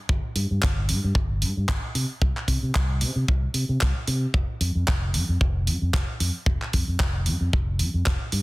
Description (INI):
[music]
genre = nu-disco, nu disco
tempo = 113 BPM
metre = 4/4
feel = swing 56% on 16ths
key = unclear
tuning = A4 = 440 Hz
[part]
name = fingered electric bass with an envelope filter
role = bass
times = 0.1-8.4 s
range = F1 to C3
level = -24 LUFS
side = equal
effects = none
[part]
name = kick drum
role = drums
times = 0.1-8.2 s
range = none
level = -24 LUFS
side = equal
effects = soft clipping on snare
[part]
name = house drum kit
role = drums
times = 0.4-8.4 s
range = handclaps, hi-hat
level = -29 LUFS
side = right 1 dB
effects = soft clipping on snare
[sound]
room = little or no reverb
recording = dense, heavily limited modern master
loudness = -22 LUFS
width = side -22 dB against mid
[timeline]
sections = 0.0-8.4 A section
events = none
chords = none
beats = | 0.10 0.63 1.16 1.69 | 2.22 2.75 3.28 3.81 | 4.34 4.88 5.41 5.94 | 6.47 7.00 7.53 8.06